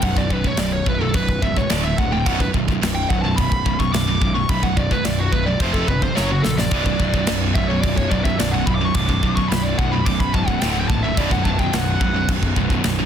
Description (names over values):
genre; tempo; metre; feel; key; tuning
heavy metal; 108 BPM; 4/4; straight; B minor; A4 = 440 Hz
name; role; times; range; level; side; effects
bluesy overdriven lead guitar; melody; 0.0-12.3 s; F#4 to D6; -24 LUFS; equal; distortion, tape echo
high-gain distorted guitar; riff; 0.0-13.1 s; B1 to F#3; -24 LUFS; right 11 dB; distortion
scooped high-gain guitar; riff; 0.0-13.1 s; B1 to F#3; -25 LUFS; left 9 dB; distortion
fuzz picked electric bass; bass; 0.0-13.1 s; B0 to A#1; -24 LUFS; left 1 dB; overdrive
modern studio drum kit; drums; 0.0-13.0 s; crash cymbal, kick drum, snare drum; -22 LUFS; equal; none
distorted electric guitar; riff; 6.7-13.1 s; B1 to D4; -26 LUFS; left 1 dB; distortion
room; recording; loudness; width
studio reverb; dense, heavily limited modern master; -17 LUFS; side -8 dB against mid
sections
0.0-13.1 A section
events
lead electric guitar solo 0.0-13.1; drum fill 6.2-6.7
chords
0.0 B5; 1.7 D5; 2.3 B5; 5.6 F5; 6.2 F#5; 6.7 Bm; 10.6 D5; 11.2 Bm